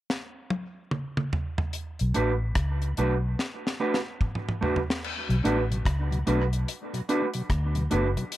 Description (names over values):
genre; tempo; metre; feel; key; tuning
dub reggae; 73 BPM; 4/4; swing 63% on 16ths; B minor; A4 = 445 Hz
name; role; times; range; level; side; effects
deep reggae drum kit; drums; 0.1-8.4 s; crash cymbal, hi-hat, kick drum, rim click, snare drum, toms; -30 LUFS; equal; none
vintage muted fingered electric bass; bass; 2.0-8.1 s; F#1 to D2; -26 LUFS; equal; none
mellow electric guitar; accompaniment; 2.1-8.2 s; A3 to B4; -29 LUFS; right 2 dB; dub echo
mellow tonewheel organ; accompaniment; 5.3-8.2 s; B2 to D4; -32 LUFS; left 1 dB; slow rotary speaker, dub echo
room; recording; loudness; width
small room ambience; none; -25 LUFS; side -14 dB against mid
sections
0.0-1.7 A section; 1.7-5.0 B section; 5.0-8.4 C section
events
drum fill 0.1-1.7, 3.4-5.0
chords
0.0 N.C.; 1.7 Bm7